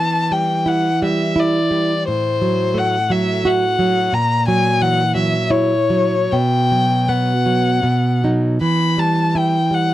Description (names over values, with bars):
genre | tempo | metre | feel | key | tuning
romantic duo for violin and classical guitar | 71-89 BPM | 3/4 | rubato | E minor | A4 = 440 Hz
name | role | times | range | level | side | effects
rich violin | melody | 0.0-9.9 s | C5 to B5 | -18 LUFS | left 4 dB | none
nylon-string guitar | accompaniment | 0.0-9.9 s | A2 to F#4 | -17 LUFS | right 2 dB | none
room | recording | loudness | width
light reverb | dry, close 1970s-style studio recording | -15 LUFS | side -14 dB against mid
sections
0.0-9.9 A section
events
none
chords
0.0 Em; 2.1 F#dim/A; 4.1 F#7/A#; 6.3 B5; 7.8 B; 8.6 Em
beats
0.67 1.38 | 2.08 2.77 3.44 | 4.12 4.80 5.50 | 6.31 7.09 7.85 | 8.61 9.36